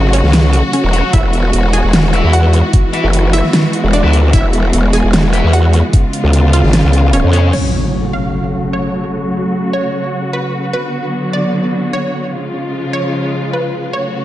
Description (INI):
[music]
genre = heavy wobble dubstep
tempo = 150 BPM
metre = 4/4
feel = half-time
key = F# harmonic minor from 7.5 s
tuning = A4 = 439 Hz
[part]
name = rich studio string section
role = sustained chords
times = 0.0-14.2 s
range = C#3 to F#4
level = -17 LUFS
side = equal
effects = sidechain pumping, low-pass filter
[part]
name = growl bass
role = bass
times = 0.0-7.5 s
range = E1 to E#2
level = -11 LUFS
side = equal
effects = chorus, overdrive
[part]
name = wide unison pluck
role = melody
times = 0.1-14.2 s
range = C#4 to G#5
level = -21 LUFS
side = right 1 dB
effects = diffuse ambient delay
[part]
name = dubstep drum kit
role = drums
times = 0.1-7.6 s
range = crash cymbal, hi-hat, snare drum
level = -17 LUFS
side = equal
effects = overdrive
[part]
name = distorted electric guitar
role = stabs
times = 0.9-7.5 s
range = C#4 to F#5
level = -24 LUFS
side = left 2 dB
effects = distortion, diffuse ambient delay
[part]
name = electronic kick drum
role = drums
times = 1.1-6.0 s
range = none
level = -11 LUFS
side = equal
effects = overdrive
[part]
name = impact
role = sound effects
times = 7.5-9.1 s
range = none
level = -20 LUFS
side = equal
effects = none
[sound]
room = moderate lush hall reverb, RT60 1.8 s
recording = dreamy mix soaked in reverb, nothing above 10.8 kHz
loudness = -11 LUFS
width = side -14 dB against mid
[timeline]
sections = 0.0-7.5 A section; 7.5-14.2 B section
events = drop 0.0-7.5; kick drops out 6.7-7.5; impact 7.5-9.1; filter sweep on string section 7.5-14.2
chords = 0.0 F#m; 1.1 Eadd9; 5.9 C#7; 7.5 F#m; 10.7 Bm; 12.3 C#